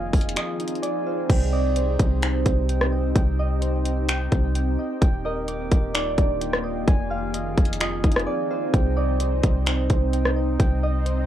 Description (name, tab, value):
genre	hip hop, atmospheric cloud-rap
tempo	129 BPM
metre	4/4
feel	half-time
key	C minor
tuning	A4 = 437 Hz
part	concert harp	melody	0.0-11.3 s	C5 to G5	-30 LUFS	right 4 dB	cassette tape, tape echo
part	shimmering ambient pad	sustained chords	0.0-11.3 s	Eb3 to Ab4	-30 LUFS	equal	chorus, built-in reverb, sidechain pumping, cassette tape
part	soft electric-piano-like synth keys	arpeggios	0.0-11.3 s	C4 to D6	-32 LUFS	left 1 dB	chorus, cassette tape, tape echo
part	warm 808-style bass	bass	0.0-11.3 s	Eb1 to C2	-24 LUFS	equal	none
part	trap drum kit	drums	0.1-11.2 s	crash cymbal, finger snaps, hi-hat, kick drum, rim click	-21 LUFS	equal	cassette tape
room	light reverb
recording	home recording on cassette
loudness	-20 LUFS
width	side -11 dB against mid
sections	0.0-1.3 A section; 1.3-11.3 B section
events	break 0.4-1.3, 8.3-8.7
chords	0.0 Fm7; 1.3 Cm; 5.0 Ebmaj7; 6.9 Fm7; 8.7 Cm